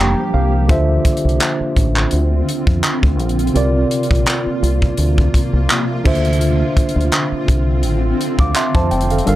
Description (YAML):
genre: contemporary R&B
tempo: 84 BPM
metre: 4/4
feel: swing 54% on 16ths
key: D minor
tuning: A4 = 439 Hz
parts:
  - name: tine electric piano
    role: accompaniment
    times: 0.0-9.4 s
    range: C3 to D6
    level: -20 LUFS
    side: right 1 dB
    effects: medium stereo tremolo
  - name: granular cloud pad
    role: sustained chords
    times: 0.0-9.4 s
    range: C3 to G4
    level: -22 LUFS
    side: equal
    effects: built-in reverb, sidechain pumping
  - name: deep dub fingered electric bass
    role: bass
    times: 0.0-9.4 s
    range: F1 to F2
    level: -16 LUFS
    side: equal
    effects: none
  - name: crisp fusion drum kit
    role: drums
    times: 0.7-9.4 s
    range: crash cymbal, handclaps, hi-hat, kick drum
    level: -17 LUFS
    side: equal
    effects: none
room: little or no reverb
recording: dry, gritty hardware recording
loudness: -14 LUFS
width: side -15 dB against mid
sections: 0.0-9.4 A section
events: break 0.0-0.7; tine electric piano fill 0.0-0.7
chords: 0.0 Gm7; 0.7 Dm7; 3.6 C7sus4; 6.1 Dm7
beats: | 0.70 1.41 2.13 2.84 | 3.55 4.27 4.98 5.70 | 6.41 7.13 7.84 8.55 | 9.27